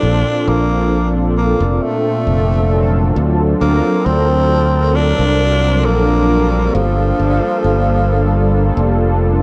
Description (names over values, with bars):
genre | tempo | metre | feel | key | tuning
vaporwave | 67 BPM | 4/4 | straight | unclear | A4 = 440 Hz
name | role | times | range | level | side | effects
raspy tenor saxophone | melody | 0.0-9.4 s | F3 to D4 | -21 LUFS | equal | tape echo
mellow synth brass | accompaniment | 0.0-9.4 s | Bb2 to A#4 | -19 LUFS | equal | lush chorus, tape echo
modern bright fingered electric bass | bass | 0.0-9.4 s | F1 to D2 | -18 LUFS | equal | tube saturation
room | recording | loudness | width
moderate lush hall reverb, RT60 2.4 s | cassette tape | -15 LUFS | mono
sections
0.0-9.4 A section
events
none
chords
0.0 Bbmaj7; 3.2 D7alt; 6.7 Gm7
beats
| 0.03 0.93 1.82 2.72 | 3.61 4.51 5.40 6.30 | 7.19 8.09 8.98